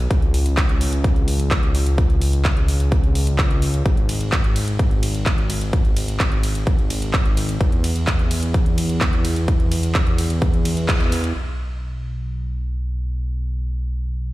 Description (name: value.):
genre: EDM, festival progressive house.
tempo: 128 BPM.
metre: 4/4.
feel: straight.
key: unclear.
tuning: A4 = 440 Hz.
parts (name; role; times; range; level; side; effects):
fat analog bass; bass; 0.0-14.3 s; G#1 to E2; -21 LUFS; equal; sidechain pumping.
big-room dance drum kit; drums; 0.1-11.3 s; handclaps, hi-hat, ride cymbal; -27 LUFS; right 1 dB; none.
electronic kick drum; drums; 0.1-11.0 s; none; -19 LUFS; equal; overdrive.
room: little or no reverb.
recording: played on a big sound system in a bare room, large studio reverb.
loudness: -17 LUFS.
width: side -18 dB against mid.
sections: 0.0-11.4 A section; 11.4-14.3 B section.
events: drop 0.0-11.4; band accent 10.9.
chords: none.